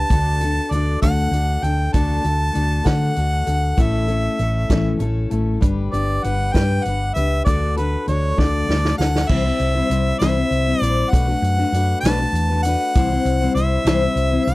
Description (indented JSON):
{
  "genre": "folk rock and heartland rock",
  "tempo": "65 BPM (dotted quarters)",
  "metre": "6/8",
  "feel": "straight",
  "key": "D major",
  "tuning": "A4 = 440 Hz",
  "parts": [
    { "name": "clear harmonica", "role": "melody", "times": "0.0-14.5 s", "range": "B4 to A5", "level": "-23 LUFS", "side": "equal", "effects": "none" },
    { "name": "picked steel-string acoustic guitar", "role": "accompaniment", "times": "0.0-14.5 s", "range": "A2 to C5", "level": "-23 LUFS", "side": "left 4 dB", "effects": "none" },
    { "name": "hollow-body short-scale fingered electric bass", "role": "bass", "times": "0.0-14.5 s", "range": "G1 to D3", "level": "-20 LUFS", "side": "equal", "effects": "none" },
    { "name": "vintage drum kit", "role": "drums", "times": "0.1-14.5 s", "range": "crash cymbal, hi-hat, kick drum, rim click, snare drum", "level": "-20 LUFS", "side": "equal", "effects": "none" }
  ],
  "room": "little or no reverb",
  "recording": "dry, close 1970s-style studio recording",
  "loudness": "-16 LUFS",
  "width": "side -19 dB against mid",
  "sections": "0.0-9.3 A section; 9.3-14.5 B section",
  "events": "drum fill 8.4-9.3",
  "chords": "0.1 D; 3.8 A; 5.6 G; 7.5 D; 9.3 C; 11.1 Bm7; 13.0 C",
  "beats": "| 0.09 1.02 | 1.94 2.86 | 3.78 4.70 | 5.62 6.54 | 7.46 8.38 | 9.30 10.21 | 11.13 12.04 | 12.96 13.87"
}